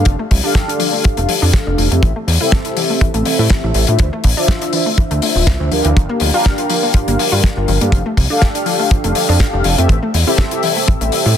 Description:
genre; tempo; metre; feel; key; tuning
nu-disco, nu disco; 122 BPM; 4/4; swing 54% on 16ths; unclear; A4 = 442 Hz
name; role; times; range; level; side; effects
mellow synth brass; accompaniment; 0.0-11.4 s; C4 to F5; -18 LUFS; equal; chorus, sidechain pumping, ping-pong delay
analog pluck; arpeggios; 0.0-11.3 s; E3 to F4; -23 LUFS; left 2 dB; chorus, sidechain pumping, tape echo
fat analog bass; bass; 0.0-11.3 s; D1 to A2; -16 LUFS; equal; none
damped 70s drum kit; drums; 0.1-11.2 s; hi-hat, snare drum; -19 LUFS; left 5 dB; none
kick drum; drums; 0.1-11.0 s; none; -13 LUFS; equal; none
room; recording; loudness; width
small room ambience; dense, heavily limited modern master; -12 LUFS; side -9 dB against mid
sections
0.0-11.4 A section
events
none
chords
0.1 F69; 2.0 Am7; 4.0 Dm9; 6.0 Gm7; 7.9 F69; 9.9 Am7

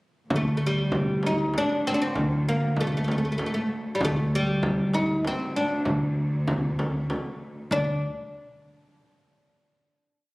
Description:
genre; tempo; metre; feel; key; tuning
Persian modal ensemble; 97 BPM; 3/4; straight; D dastgah homayun; A4 = 439 Hz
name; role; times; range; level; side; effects
upright bass; bass; 0.3-8.0 s; D2; -28 LUFS; equal; none
clear symphonic cello section; drone; 0.3-7.8 s; D2; -37 LUFS; equal; none
frame drum; percussion; 0.3-8.0 s; none; -31 LUFS; equal; none
oud; melody; 0.4-8.0 s; G3 to Eb4+45c; -26 LUFS; equal; slapback echo
room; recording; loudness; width
moderate recital hall reverb, RT60 1.5 s; recorded on a phone in the room, club reverb, compression; -23 LUFS; side -22 dB against mid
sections
0.3-7.7 A section; 7.7-9.6 final note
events
none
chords
none

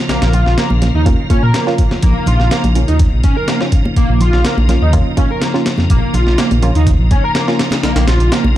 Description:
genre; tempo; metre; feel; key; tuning
breakbeat, breaks; 124 BPM; 4/4; straight; Bb minor; A4 = 440 Hz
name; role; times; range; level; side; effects
tonewheel organ; sustained chords; 0.0-8.6 s; Db3 to F4; -22 LUFS; equal; chorus vibrato, slow rotary speaker, vintage 12-bit sampler grit, sidechain pumping
overdriven synth lead; riff; 0.1-8.4 s; Bb3 to Bb4; -19 LUFS; right 1 dB; ensemble chorus, vintage 12-bit sampler grit, digital delay
dark detuned saw bass; bass; 0.1-8.6 s; Bb1 to Bb2; -13 LUFS; equal; none
breakbeat sampler-style drum kit; drums; 0.1-8.4 s; hi-hat, kick drum, snare drum; -16 LUFS; equal; studio reverb
congas; percussion; 0.3-8.5 s; none; -22 LUFS; right 2 dB; none
filtered dub chord stab; stabs; 0.8-7.7 s; Bb3 to F4; -21 LUFS; right 2 dB; chorus, digital delay
room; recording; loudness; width
little or no reverb; dark, warm production; -11 LUFS; side -13 dB against mid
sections
0.0-8.6 A section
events
filter sweep on synth stab 0.0-8.6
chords
0.0 Bbm

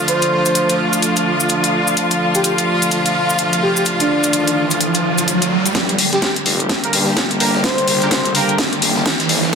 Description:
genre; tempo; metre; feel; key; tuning
bass house; 127 BPM; 4/4; swing 60% on 16ths; G minor; A4 = 440 Hz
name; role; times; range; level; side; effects
dark studio string section; sustained chords; 0.0-9.6 s; D3 to G4; -20 LUFS; left 2 dB; sidechain pumping, low-pass filter
brilliant horn section; stabs; 0.0-8.6 s; F3 to Bb4; -21 LUFS; right 3 dB; sidechain pumping, low-pass filter, digital delay
breathy flute-like synth lead; melody; 0.1-8.3 s; D4 to C5; -20 LUFS; equal; chorus, digital delay
house drum kit; drums; 0.1-9.6 s; hi-hat, snare drum; -18 LUFS; left 1 dB; none
maracas; percussion; 0.1-5.7 s; none; -24 LUFS; equal; none
riser; sound effects; 3.7-9.6 s; none; -22 LUFS; right 2 dB; none
phased detuned saw bass; bass; 5.7-9.6 s; F1 to G2; -24 LUFS; left 1 dB; phaser, tube saturation, sidechain pumping, high-pass filter
breakbeat sampler-style drum kit; drums; 5.7-9.6 s; hi-hat, snare drum; -27 LUFS; equal; none
electronic kick drum; drums; 5.7-9.6 s; none; -27 LUFS; equal; high-pass filter on kick
room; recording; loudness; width
moderate plate reverb, RT60 1.7 s; dense, heavily limited modern master, high-pass filter; -14 LUFS; side -6 dB against mid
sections
0.0-5.7 A section; 5.7-9.6 B section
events
riser 3.7-5.7, 5.7-9.6; build-up 5.7-9.6; drum fill 5.7-9.6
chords
0.0 Dm; 5.7 Gm

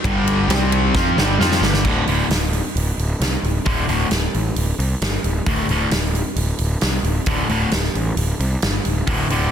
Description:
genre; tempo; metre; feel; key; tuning
hard rock; 133 BPM; 4/4; straight; D minor; A4 = 440 Hz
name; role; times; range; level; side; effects
cranked stack guitar; riff; 0.0-9.5 s; D2 to F4; -19 LUFS; equal; overdrive
fuzz picked electric bass; bass; 0.0-9.5 s; D1 to F2; -21 LUFS; equal; overdrive
big rock drum kit; drums; 0.0-9.4 s; crash cymbal, hi-hat, kick drum, ride cymbal, snare drum; -22 LUFS; equal; none
room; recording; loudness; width
light reverb; dense, heavily limited modern master; -17 LUFS; side -9 dB against mid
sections
0.0-1.8 A section; 1.8-9.5 B section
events
drum fill 0.9-1.8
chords
0.5 C5; 0.9 G5; 1.8 D5

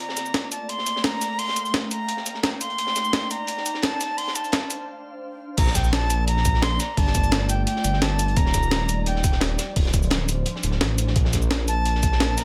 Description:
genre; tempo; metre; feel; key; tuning
liquid drum and bass; 172 BPM; 4/4; straight; Bb major; A4 = 437 Hz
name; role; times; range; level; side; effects
bright reedy silver concert flute; melody; 0.0-12.4 s; G5 to C6; -29 LUFS; equal; delay
glassy FM pad; sustained chords; 0.0-12.4 s; F3 to G5; -36 LUFS; equal; ensemble chorus, built-in reverb, sidechain pumping
crunchy breakbeat drum kit; drums; 0.1-12.4 s; hi-hat, snare drum; -35 LUFS; equal; high-pass filter on hats, high-pass filter on snare, high-pass filter on room
breakbeat sampler-style drum kit; drums; 0.2-12.4 s; crash cymbal, hi-hat, shaker, snare drum; -28 LUFS; equal; none
dark detuned saw bass; bass; 5.6-12.4 s; D1 to Bb1; -26 LUFS; equal; tube saturation
electronic kick drum; drums; 5.6-12.1 s; none; -24 LUFS; equal; none
room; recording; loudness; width
light reverb, small room reverb; none; -23 LUFS; mono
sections
0.0-5.6 A section; 5.6-12.4 B section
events
build-up 0.0-5.6; filter sweep on ambient pad 0.0-5.6; break 4.9-5.6; drop 5.6-12.4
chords
0.0 Bbmaj7; 1.2 Gm9; 2.8 Ebmaj7; 4.0 Dm7; 5.6 Bbmaj7; 6.8 Gsus2; 8.4 Ebmaj7; 9.6 Dm7; 11.2 Bbmaj7

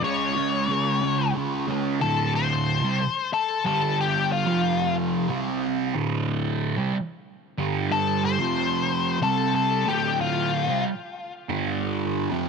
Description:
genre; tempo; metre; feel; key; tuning
rock; 61 BPM (dotted quarters); 6/8; straight; D minor; A4 = 440 Hz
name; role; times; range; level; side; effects
octave-fuzz lead guitar; melody; 0.0-4.9, 7.9-10.8 s; F4 to C#5; -26 LUFS; left 7 dB; distortion, tape echo
thick fuzz guitar; riff; 0.0-12.5 s; D2 to C#4; -24 LUFS; right 3 dB; distortion, phaser
room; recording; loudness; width
light reverb, digital ambience; none; -22 LUFS; side -5 dB against mid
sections
0.0-2.0 A section; 2.0-12.5 B section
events
lead electric guitar solo 2.0-12.5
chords
0.0 C#5; 2.0 D5; 3.6 G5; 4.5 F5; 5.3 C5; 5.9 D5; 7.6 G5; 8.4 F5; 9.2 C5; 9.9 Dm; 11.5 G5

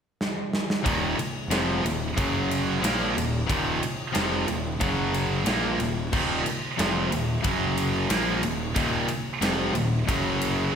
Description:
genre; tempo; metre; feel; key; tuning
hard rock; 91 BPM; 4/4; straight; Eb dorian; A4 = 440 Hz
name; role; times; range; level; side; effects
big rock drum kit; drums; 0.2-10.6 s; crash cymbal, kick drum, ride cymbal, snare drum; -28 LUFS; equal; none
cranked stack guitar; riff; 0.8-10.8 s; Eb2 to Bb3; -28 LUFS; left 7 dB; overdrive
high-gain distorted guitar; riff; 0.8-10.7 s; Eb2 to Bb3; -28 LUFS; right 7 dB; distortion
fuzz picked electric bass; bass; 0.9-10.7 s; Eb1 to Bb1; -32 LUFS; equal; overdrive
room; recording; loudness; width
wet recital hall reverb, RT60 1.3 s, studio reverb; big arena sound; -23 LUFS; side -7 dB against mid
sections
0.8-10.8 A section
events
drum fill 0.2-0.8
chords
0.0 N.C.; 0.8 Eb5; 2.2 Gb5; 2.8 Eb5; 4.8 Gb5; 5.5 Eb5; 7.4 Gb5; 8.1 Eb5; 10.1 Gb5

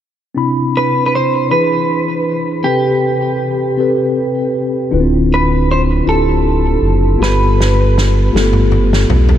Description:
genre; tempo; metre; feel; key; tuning
slow gospel; 53 BPM (dotted quarters); 6/8; straight; C major; A4 = 441 Hz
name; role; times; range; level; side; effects
mellow tine electric piano; accompaniment; 0.3-9.4 s; G2 to B5; -15 LUFS; left 1 dB; medium stereo tremolo
clean electric guitar; melody; 0.8-8.7 s; G4 to C5; -17 LUFS; right 1 dB; lush chorus, tape echo
sub bass with octave; bass; 4.9-9.4 s; D1 to B1; -13 LUFS; equal; none
natural country drum kit; drums; 7.2-9.4 s; snare drum, toms; -18 LUFS; left 1 dB; none
room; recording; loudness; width
moderate cathedral reverb, RT60 6.5 s; dreamy mix soaked in reverb; -12 LUFS; side -10 dB against mid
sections
0.4-9.4 A section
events
drum fill 7.2-9.4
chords
0.4 Cmaj9; 1.5 E7; 2.6 Am9/C; 4.9 Dm9; 7.2 G9

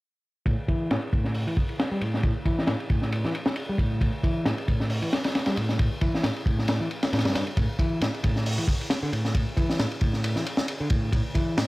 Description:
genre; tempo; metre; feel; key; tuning
breakbeat, breaks; 135 BPM; 4/4; swing 54% on 16ths; unclear; A4 = 440 Hz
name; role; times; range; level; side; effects
picked electric bass; riff; 0.5-11.6 s; G2 to G3; -28 LUFS; equal; overdrive, low-pass filter, digital delay
crunchy breakbeat drum kit; drums; 0.5-11.7 s; hi-hat, kick drum, ride cymbal, snare drum; -25 LUFS; equal; low-pass filter on kick, low-pass filter on cymbals, low-pass filter on hats, low-pass filter on snare, low-pass filter on room
room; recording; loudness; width
light reverb; none; -23 LUFS; side -20 dB against mid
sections
0.5-11.7 A section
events
filter sweep on drum 0.5-11.7; filter sweep on picked electric bass 0.5-11.7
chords
none

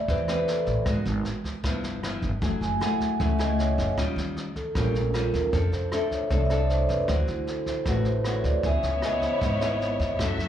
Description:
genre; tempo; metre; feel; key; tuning
bossa nova; 154 BPM; 4/4; straight; unclear; A4 = 441 Hz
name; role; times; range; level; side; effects
nylon-string guitar; accompaniment; 0.0-10.5 s; G2 to B4; -30 LUFS; left 2 dB; slapback echo
vibraphone with soft mallets; accompaniment; 0.0-10.2 s; C#4 to G#5; -28 LUFS; right 2 dB; slapback echo
upright bass; bass; 0.1-10.5 s; F#1 to F#2; -28 LUFS; equal; none
jazz brush drum kit; drums; 0.1-10.4 s; kick drum, rim click, snare drum; -33 LUFS; equal; none
warm studio string section; sustained chords; 8.6-10.5 s; A3 to E5; -31 LUFS; left 1 dB; none
room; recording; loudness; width
moderate club reverb, RT60 0.6 s; live gig heard through the venue's PA, club reverb; -23 LUFS; side -10 dB against mid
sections
0.0-10.5 A section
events
vibraphone solo 0.0-10.5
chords
0.0 Am9; 0.9 G#m9; 1.6 G6; 2.4 F#m9; 4.0 D#9; 5.5 F6; 7.1 D9; 8.6 C#m7

